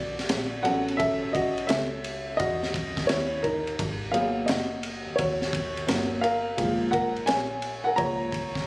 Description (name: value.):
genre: hip hop, jazz-hop.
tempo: 86 BPM.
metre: 4/4.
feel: swing 66% on 16ths.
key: unclear.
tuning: A4 = 439 Hz.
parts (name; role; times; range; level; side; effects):
dark upright piano; accompaniment; 0.0-8.7 s; E#3 to A#5; -26 LUFS; equal; none.
metallic FM bass; bass; 0.0-8.6 s; F#1 to E2; -37 LUFS; equal; none.
crunchy breakbeat drum kit; drums; 0.2-8.7 s; hi-hat, kick drum, ride cymbal, snare drum; -31 LUFS; equal; none.
room: light reverb.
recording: recorded on a phone in the room, club reverb, compression.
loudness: -24 LUFS.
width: side -25 dB against mid.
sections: 0.0-8.7 A section.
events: upright piano solo 0.0-8.7.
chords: 0.0 E7sus2 (rootless); 0.7 A69; 3.8 G#m9; 6.6 F#maj7.